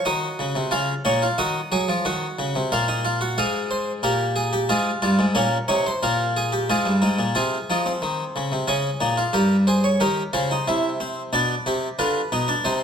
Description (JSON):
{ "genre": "classical, baroque-style 3-part fugue for harpsichord", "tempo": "90 BPM", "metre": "3/4", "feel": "straight", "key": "Bb minor", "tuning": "A4 = 440 Hz", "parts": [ { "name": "harpsichord", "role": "solo", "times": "0.0-12.8 s", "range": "G2 to F5", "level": "-20 LUFS", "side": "equal", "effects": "none" } ], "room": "wet recital hall reverb, RT60 1.3 s", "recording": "close, detailed microphones", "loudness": "-20 LUFS", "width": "side -7 dB against mid", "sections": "0.0-7.4 A section; 7.4-12.8 B section", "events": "none", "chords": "0.0 N.C.; 0.7 Bbm/Db; 1.4 Ebm; 2.7 Bb5; 3.4 Fm/Ab; 5.4 Bbm; 6.7 Fm; 7.4 Ab/C; 8.7 Db; 9.3 Gdim; 10.7 C; 11.3 G7/B", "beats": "0.06 0.72 | 1.38 2.04 2.71 | 3.37 4.03 4.69 | 5.36 6.02 6.69 | 7.35 8.02 8.68 | 9.35 10.01 10.67 | 11.33 11.99 12.65" }